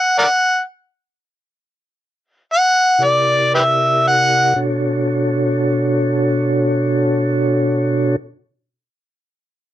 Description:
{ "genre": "blues", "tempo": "37-44 BPM (dotted quarters)", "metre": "12/8", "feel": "straight", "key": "B minor", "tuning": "A4 = 440 Hz", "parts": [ { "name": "overdriven harmonica", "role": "melody", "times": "0.0-4.6 s", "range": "G4 to F#5", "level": "-13 LUFS", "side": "equal", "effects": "none" }, { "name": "mellow tonewheel organ", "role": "sustained chords", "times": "3.0-8.2 s", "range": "B2 to D5", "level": "-16 LUFS", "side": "equal", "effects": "slow rotary speaker" } ], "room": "light reverb", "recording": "none", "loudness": "-14 LUFS", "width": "side -12 dB against mid", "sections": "0.0-4.6 A section; 4.6-9.7 B section", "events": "slowing down 0.0-4.6; harmonica solo 0.0-4.6; stop 0.0-3.0", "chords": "0.0 N.C.; 3.0 C7; 4.6 Bm9", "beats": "0.13 1.53 3.00 | 4.56 6.17 7.78" }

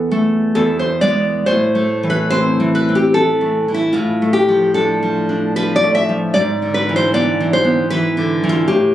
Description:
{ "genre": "romantic piece for solo classical guitar", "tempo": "65-79 BPM", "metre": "3/4", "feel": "rubato", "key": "A minor", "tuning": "A4 = 439 Hz", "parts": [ { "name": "nylon-string guitar", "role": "solo", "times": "0.0-8.9 s", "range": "E2 to E5", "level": "-13 LUFS", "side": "equal", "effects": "none" } ], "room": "moderate studio reverb, RT60 0.6 s", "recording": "recorded on a phone in the room, club reverb", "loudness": "-13 LUFS", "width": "side -12 dB against mid", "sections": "0.0-1.5 A section; 1.5-8.9 B section", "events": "none", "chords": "0.0 Esus4; 0.6 E; 1.5 Am; 3.9 Dm/A; 6.3 E7/G#", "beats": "0.58 | 1.48 2.32 3.14 | 3.95 4.75 5.55 | 6.34 7.12 7.89 | 8.67" }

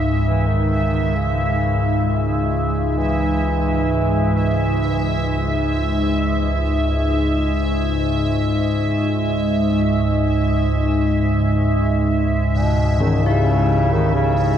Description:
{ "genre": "dark ambient drone", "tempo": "free time", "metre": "none", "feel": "none", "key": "C# minor", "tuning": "A4 = 437 Hz", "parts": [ { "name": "carillon bells", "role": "arpeggios", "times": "0.0-2.8, 13.0-14.6 s", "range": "C#3 to E4", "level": "-27 LUFS", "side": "left 3 dB", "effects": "analog delay" }, { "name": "organ-like drone", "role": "drone", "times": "0.0-14.6 s", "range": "C#2 to G#2", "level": "-18 LUFS", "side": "equal", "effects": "ensemble chorus, built-in reverb" }, { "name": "bubbling stepped-filter texture", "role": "texture", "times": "0.0-14.6 s", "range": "E5", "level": "-26 LUFS", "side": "right 1 dB", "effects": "chorus, built-in reverb" }, { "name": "clear bass clarinet", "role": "melody", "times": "0.3-5.7, 12.5-14.6 s", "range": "B2 to E3", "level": "-24 LUFS", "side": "left 1 dB", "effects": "analog delay" } ], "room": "wet huge ambient reverb, RT60 7.9 s", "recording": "dreamy mix soaked in reverb", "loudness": "-16 LUFS", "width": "side -9 dB against mid", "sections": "0.0-14.6 A section", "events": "fade-in on church bells 0.0-14.6; fade-in on bass clarinet 0.0-14.6; fade-out on synth texture 0.0-14.6", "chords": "0.0 C#m", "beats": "free time" }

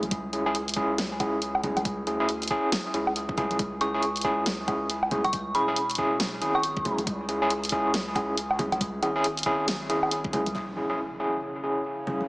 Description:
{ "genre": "deep dubstep", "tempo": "138 BPM", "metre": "4/4", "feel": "swing 61% on 16ths, half-time", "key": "C# phrygian", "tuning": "A4 = 438 Hz", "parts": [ { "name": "overdriven tine electric piano", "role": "stabs", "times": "0.0-12.2 s", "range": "C#4 to G#4", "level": "-27 LUFS", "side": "equal", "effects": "medium tremolo, dub echo" }, { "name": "saturated sub bass", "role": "bass", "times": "0.0-10.5 s", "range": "E1 to D2", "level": "-38 LUFS", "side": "equal", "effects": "none" }, { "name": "dubstep drum kit", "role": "drums", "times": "0.0-10.5 s", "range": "hi-hat, snare drum, woodblock", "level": "-29 LUFS", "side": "equal", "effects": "low-pass filter on hats, small room ambience, low-pass filter on snare, low-pass filter on perc" }, { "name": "congas", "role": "percussion", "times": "0.0-12.3 s", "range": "none", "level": "-36 LUFS", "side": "equal", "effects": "dub echo" }, { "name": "electronic kick drum", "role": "drums", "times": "0.1-10.3 s", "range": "none", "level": "-33 LUFS", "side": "equal", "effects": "small room ambience" }, { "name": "dark detuned synth bell", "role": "melody", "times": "3.8-7.0 s", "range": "B5 to C#6", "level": "-31 LUFS", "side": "equal", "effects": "chorus, dub echo" }, { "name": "bowed-like drone", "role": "sustained chords", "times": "11.1-12.3 s", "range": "C#3", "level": "-38 LUFS", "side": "equal", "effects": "built-in reverb" }, { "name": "impact", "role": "sound effects", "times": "10.5-12.3 s", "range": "none", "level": "-43 LUFS", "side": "equal", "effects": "none" } ], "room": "moderate echo chamber reverb, RT60 2.3 s", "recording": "small speaker sound", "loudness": "-24 LUFS", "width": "side -24 dB against mid", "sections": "0.0-10.5 A section; 10.5-12.3 B section", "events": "impact 10.5-12.3", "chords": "0.0 C#m", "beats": "| 0.11 0.55 0.98 1.42 | 1.85 2.29 2.72 3.16 | 3.59 4.03 4.46 4.90 | 5.33 5.77 6.20 6.64 | 7.07 7.50 7.94 8.38 | 8.81 9.24 9.68 10.11 | 10.55 10.98 11.42 11.85" }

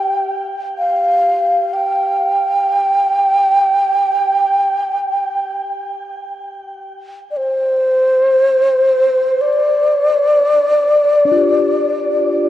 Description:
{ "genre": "world meditative, free-time meditation music", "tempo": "free time", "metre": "none", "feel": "none", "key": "unclear", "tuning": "A4 = 441 Hz", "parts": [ { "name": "breathy low xiao", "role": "melody", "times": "0.0-12.5 s", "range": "C5 to G5", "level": "-13 LUFS", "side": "equal", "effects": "shimmer reverb, ping-pong delay" }, { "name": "bronze singing bowl", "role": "texture", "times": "0.0-12.5 s", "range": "D4 to G4", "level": "-24 LUFS", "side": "left 2 dB", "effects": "shimmer reverb" } ], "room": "wet huge ambient reverb, RT60 8.2 s", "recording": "worn, warbling old tape, cassette tape, warbly pitch drift", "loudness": "-12 LUFS", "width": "side -13 dB against mid", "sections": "0.0-12.5 A section", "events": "none", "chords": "none", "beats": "free time" }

